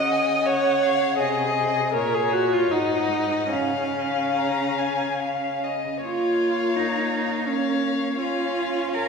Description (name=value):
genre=classical, slow romantic movement for string quartet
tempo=70-86 BPM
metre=3/4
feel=rubato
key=Db major, Bb minor from 6.0 s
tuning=A4 = 441 Hz
part: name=warm violin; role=melody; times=0.0-9.1 s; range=Db5 to Ab5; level=-30 LUFS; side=left 6 dB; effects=none
part: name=dark violin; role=second line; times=0.0-9.1 s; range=Db5 to Bb5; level=-29 LUFS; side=left 3 dB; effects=none
part: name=warm viola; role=accompaniment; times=0.0-9.1 s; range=Bb3 to Eb5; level=-24 LUFS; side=equal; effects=none
part: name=rich cello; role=bass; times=0.0-9.1 s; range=Ab2 to Bb4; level=-27 LUFS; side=right 3 dB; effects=none
room=wet concert hall reverb, RT60 2.1 s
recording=minimal, uncompressed stereo recording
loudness=-21 LUFS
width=side -5 dB against mid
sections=0.0-6.0 A section; 6.0-9.1 B section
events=none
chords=0.0 Ebm7/Db; 1.2 Ab/C; 1.9 Bbm; 2.7 Ab5; 3.5 Db; 6.0 Bbm; 8.2 Bbm/Db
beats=0.47 | 1.19 1.95 2.71 | 3.53 4.36 5.21 | 6.04 6.77 7.48 | 8.19 8.95